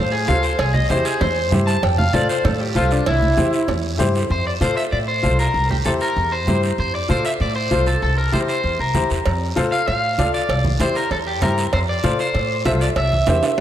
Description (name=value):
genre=latin, cumbia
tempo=194 BPM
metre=4/4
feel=straight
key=F major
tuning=A4 = 440 Hz
part: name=electric guitar at the edge of break-up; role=melody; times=0.0-13.6 s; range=D4 to A5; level=-21 LUFS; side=equal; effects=spring reverb
part: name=upright bass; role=bass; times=0.0-13.4 s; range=C2 to A2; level=-21 LUFS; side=equal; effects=none
part: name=bright upright piano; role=accompaniment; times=0.3-13.5 s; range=E4 to D5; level=-24 LUFS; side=left 3 dB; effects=none
part: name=congas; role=percussion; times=0.3-13.6 s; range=none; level=-26 LUFS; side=right 2 dB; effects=none
part: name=guiro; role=percussion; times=0.3-13.6 s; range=none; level=-33 LUFS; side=right 5 dB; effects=none
part: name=timbales and cowbell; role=percussion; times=0.3-3.8, 9.3-13.6 s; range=none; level=-28 LUFS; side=right 4 dB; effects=none
room=moderate lush hall reverb, RT60 2.1 s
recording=dreamy mix soaked in reverb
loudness=-16 LUFS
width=side -11 dB against mid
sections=0.0-4.3 A section; 4.3-13.6 B section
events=clean electric guitar solo 0.0-4.3; drum fill 13.3-13.6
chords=0.0 F; 0.6 C; 1.8 F; 3.1 C; 4.3 F; 5.5 C7; 6.8 F; 8.0 C7; 9.3 F; 10.5 C; 11.7 F; 13.0 C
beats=0.28 | 0.59 0.90 1.21 1.52 | 1.83 2.14 2.45 2.76 | 3.07 3.38 3.69 4.00 | 4.30 4.61 4.92 5.23 | 5.54 5.85 6.16 6.47 | 6.78 7.09 7.40 7.71 | 8.02 8.33 8.64 8.95 | 9.26 9.56 9.87 10.18 | 10.49 10.80 11.11 11.42 | 11.73 12.04 12.35 12.66 | 12.96 13.27 13.58